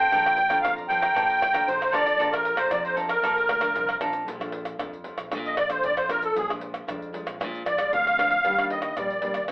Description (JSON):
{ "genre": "samba and choro", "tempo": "115 BPM", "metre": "4/4", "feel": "straight", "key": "Bb major", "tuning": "A4 = 440 Hz", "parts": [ { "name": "musette accordion", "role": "melody", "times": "0.0-9.5 s", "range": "Ab4 to G5", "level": "-22 LUFS", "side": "equal", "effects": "none" }, { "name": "cavaquinho", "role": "accompaniment", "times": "0.0-4.3 s", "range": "F4 to Bb5", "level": "-30 LUFS", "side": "right 1 dB", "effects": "none" }, { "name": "nylon-string guitar", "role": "accompaniment", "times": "0.0-9.5 s", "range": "F2 to D4", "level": "-35 LUFS", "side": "equal", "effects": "none" }, { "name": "modern bright fingered electric bass", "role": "bass", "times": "0.1-9.5 s", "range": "Bb1 to Eb3", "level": "-41 LUFS", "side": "equal", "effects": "none" }, { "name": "egg shaker, surdo, pandeiro and tamborim", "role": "percussion", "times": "0.1-9.5 s", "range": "none", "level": "-32 LUFS", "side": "right 1 dB", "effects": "none" } ], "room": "wet small room reverb, RT60 0.5 s", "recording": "band playing live in one room, telephone sound", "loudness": "-22 LUFS", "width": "side -24 dB against mid", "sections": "0.0-4.3 A section; 4.3-9.5 B section", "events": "accordion solo 4.3-9.5", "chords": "0.1 Bbmaj7; 6.4 Bb7; 8.4 Ebmaj7" }